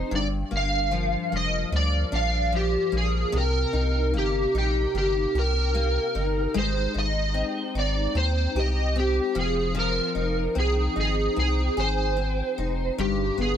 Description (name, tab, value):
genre	indie pop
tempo	75 BPM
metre	4/4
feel	straight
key	C minor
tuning	A4 = 438 Hz
part	overdriven slide guitar	melody	0.0-13.6 s	G4 to F5	-26 LUFS	right 1 dB	analog chorus, tape echo
part	picked steel-string acoustic guitar	accompaniment	0.0-13.6 s	G2 to Ab4	-30 LUFS	left 5 dB	ensemble chorus, warbly pitch drift
part	round analog bass	bass	0.0-13.6 s	F1 to Eb2	-26 LUFS	equal	none
room	light reverb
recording	none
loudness	-22 LUFS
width	side -9 dB against mid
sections	0.0-13.6 A section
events	none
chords	0.1 Gm7; 3.3 Cm7; 6.5 Abmaj7; 9.4 Fm7; 13.0 Gaug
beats	| 0.12 0.92 1.73 2.53 | 3.33 4.14 4.94 5.74 | 6.55 7.35 8.16 8.96 | 9.77 10.57 11.38 12.18 | 12.99